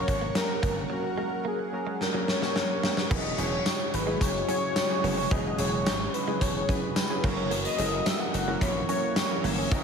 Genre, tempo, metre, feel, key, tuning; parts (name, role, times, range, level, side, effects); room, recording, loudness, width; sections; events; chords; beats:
1980s-style pop; 109 BPM; 4/4; straight; A4 = 440 Hz
octave-doubled lead; melody; 0.0-9.8 s; F#4 to F#5; -31 LUFS; left 1 dB; chorus, tape echo, slapback echo
warm analog keys; accompaniment; 0.0-9.8 s; F#3 to A#4; -33 LUFS; left 1 dB; chorus
phased analog pad; sustained chords; 0.0-9.8 s; C#3 to C#6; -36 LUFS; right 1 dB; phaser, chorus
direct-recorded clean electric guitar; riff; 0.0-9.8 s; F#3 to C#4; -38 LUFS; right 6 dB
gritty slap bass; bass; 0.1-9.8 s; E1 to A#1; -33 LUFS; equal; overdrive
big rock drum kit; drums; 0.1-9.8 s; crash cymbal, hi-hat, kick drum, snare drum, tambourine; -29 LUFS; equal
moderate lush hall reverb, RT60 1.9 s, studio ambience; big arena sound; -25 LUFS; side -6 dB against mid
0.0-3.1 A section; 3.1-9.8 B section
drum fill 2.0-3.1
0.0 F#; 3.1 E69; 7.2 F#7
0.36 | 0.91 1.46 2.01 2.56 | 3.11 3.66 4.21 4.76 | 5.31 5.86 6.41 6.96 | 7.51 8.06 8.61 9.16 | 9.71